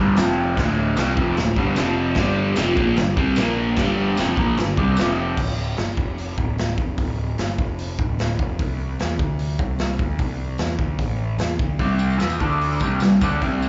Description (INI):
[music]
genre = garage rock duo or trio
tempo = 149 BPM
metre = 4/4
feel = straight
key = unclear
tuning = A4 = 440 Hz
[part]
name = raw garage guitar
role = riff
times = 0.0-5.4, 11.8-13.7 s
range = D2 to E4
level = -22 LUFS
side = equal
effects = overdrive, phaser, slapback echo
[part]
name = fuzz picked electric bass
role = bass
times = 0.0-13.7 s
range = D1 to E2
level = -28 LUFS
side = equal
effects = overdrive
[part]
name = raw garage drum kit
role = drums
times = 0.2-13.5 s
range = crash cymbal, hi-hat, kick drum, snare drum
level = -26 LUFS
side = equal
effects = none
[part]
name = tambourine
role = percussion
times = 0.2-5.1, 12.0-13.7 s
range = none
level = -41 LUFS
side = equal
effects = none
[sound]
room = small room ambience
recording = live gig heard through the venue's PA, club ambience, nothing above 7.7 kHz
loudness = -21 LUFS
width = mono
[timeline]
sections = 0.0-5.4 A section; 5.4-13.7 B section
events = none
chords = 0.2 F5; 0.6 D5; 1.8 F5; 2.2 G5; 3.4 Bb5; 3.8 G5; 5.0 F5; 5.4 Dsus4; 6.0 N.C.; 6.4 Dmadd11; 7.6 N.C.; 8.0 Dm; 8.6 C; 9.2 N.C.; 9.6 Cadd9; 11.0 N.C.; 11.4 C5; 12.4 D5; 12.8 C5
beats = 0.17 | 0.57 0.97 1.37 1.77 | 2.17 2.57 2.97 3.37 | 3.77 4.17 4.57 4.97 | 5.37 5.77 6.17 6.58 | 6.98 7.38 7.78 8.19 | 8.59 8.99 9.39 9.79 | 10.20 10.60 11.00 11.40 | 11.80 12.21 12.61 13.01 | 13.41